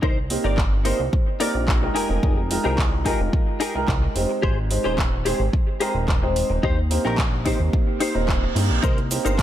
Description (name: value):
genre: nu-disco, nu disco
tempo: 109 BPM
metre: 4/4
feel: straight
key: C minor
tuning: A4 = 440 Hz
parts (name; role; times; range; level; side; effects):
- direct-recorded clean electric guitar; riff; 0.0-9.4 s; Eb4 to D5; -28 LUFS; left 3 dB; ensemble chorus, analog delay
- chorused synth bass; bass; 0.0-9.4 s; Eb1 to G2; -24 LUFS; equal; tube saturation
- electronic kick drum; drums; 0.0-9.4 s; none; -22 LUFS; equal; none
- warm concert grand piano; accompaniment; 0.3-9.4 s; Ab3 to G5; -26 LUFS; right 1 dB; lush chorus, sidechain pumping, analog delay
- pop drum kit; drums; 0.3-9.4 s; handclaps, hi-hat, shaker; -29 LUFS; right 1 dB; none
- reverse cymbal; sound effects; 8.1-8.8 s; none; -32 LUFS; right 6 dB; none
room: light reverb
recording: none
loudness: -19 LUFS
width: side -12 dB against mid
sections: 0.0-9.4 A section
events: reverse cymbal 8.1-8.8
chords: 0.0 Cm7; 2.0 Fm11; 4.4 Abmaj7; 6.6 Eb6; 8.8 Cm7